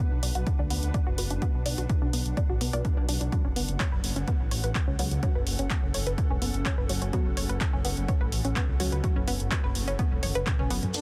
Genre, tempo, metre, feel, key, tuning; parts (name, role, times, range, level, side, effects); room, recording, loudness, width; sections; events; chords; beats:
melodic techno; 126 BPM; 4/4; straight; A4 = 441 Hz
analog pluck; arpeggios; 0.0-11.0 s; B3 to D5; -38 LUFS; equal; chorus, phaser, cassette tape, sidechain pumping, tape echo
filtered dub chord stab; stabs; 0.0-10.9 s; F#3 to B4; -40 LUFS; equal; phaser, analog chorus, sidechain pumping, tape echo
granular cloud pad; texture; 0.0-11.0 s; C#4 to F#5; -42 LUFS; equal; built-in reverb, sidechain pumping
swelling detuned saw bass; bass; 0.1-10.9 s; E1 to F#2; -32 LUFS; equal; sidechain pumping
punchy analog drum machine; drums; 0.2-11.0 s; crash cymbal, handclaps, hi-hat, toms; -36 LUFS; equal
electronic kick drum; drums; 0.5-10.6 s; -30 LUFS; equal
soft supersaw; melody; 10.9-11.0 s; D4; -34 LUFS; equal; phaser, sidechain pumping, low-pass filter
shekere; percussion; 10.9-11.0 s; -34 LUFS; equal
little or no reverb; dense, heavily limited modern master; -27 LUFS; mono
0.0-10.9 A section
filter sweep on synth arpeggio sound 0.0-10.9; drum fill 10.2-10.9
0.0 Bm; 3.3 F#m
0.47 0.94 | 1.42 1.90 2.37 2.85 | 3.32 3.80 4.28 4.75 | 5.23 5.71 6.18 6.66 | 7.13 7.61 8.09 8.56 | 9.04 9.51 9.99 10.47 | 10.94